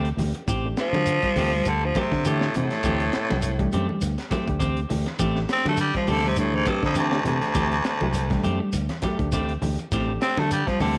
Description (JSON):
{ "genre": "afrobeat", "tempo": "102 BPM", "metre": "4/4", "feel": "swing 56% on 16ths", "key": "D mixolydian", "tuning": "A4 = 440 Hz", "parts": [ { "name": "semi-hollow electric guitar", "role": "arpeggios", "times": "0.0-10.9 s", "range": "D3 to G3", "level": "-34 LUFS", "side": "equal", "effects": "none" }, { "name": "clean electric guitar", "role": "stabs", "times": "0.0-11.0 s", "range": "A3 to G4", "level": "-33 LUFS", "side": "equal", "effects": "none" }, { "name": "fingered electric bass", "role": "bass", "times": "0.0-11.0 s", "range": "A1 to D3", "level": "-29 LUFS", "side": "equal", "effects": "none" }, { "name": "crunchy breakbeat drum kit", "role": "drums", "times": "0.0-11.0 s", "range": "hi-hat, kick drum, snare drum", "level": "-34 LUFS", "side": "equal", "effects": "none" }, { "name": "reed electric piano", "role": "accompaniment", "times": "0.2-10.5 s", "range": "A3 to G4", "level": "-37 LUFS", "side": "equal", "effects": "none" }, { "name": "congas", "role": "percussion", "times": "0.2-11.0 s", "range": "none", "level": "-35 LUFS", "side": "equal", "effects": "none" }, { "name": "shekere", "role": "percussion", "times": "0.2-11.0 s", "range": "none", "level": "-36 LUFS", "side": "equal", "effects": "none" }, { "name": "raspy baritone saxophone", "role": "melody", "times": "0.8-11.0 s", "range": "D2 to C4", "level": "-26 LUFS", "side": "equal", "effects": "none" } ], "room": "light reverb", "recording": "none", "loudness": "-24 LUFS", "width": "mono", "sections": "0.0-11.0 A section", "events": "baritone saxophone solo 0.0-11.0", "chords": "0.0 D7sus4" }